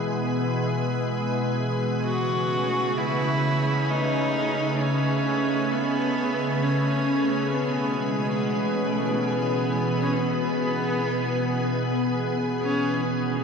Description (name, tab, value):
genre	ambient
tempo	free time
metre	none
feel	none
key	unclear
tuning	A4 = 442 Hz
part	soft additive organ-like pad	sustained chords	0.0-13.4 s	B2 to B4	-24 LUFS	equal	ensemble chorus, built-in reverb
part	rich cello	melody	2.1-13.4 s	G#3 to F#4	-26 LUFS	right 1 dB	diffuse ambient delay
room	wet huge ambient reverb, RT60 9.1 s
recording	none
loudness	-22 LUFS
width	side -6 dB against mid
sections	0.0-13.1 A section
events	none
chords	0.0 E/B; 2.0 B7sus2; 7.5 E/B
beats	free time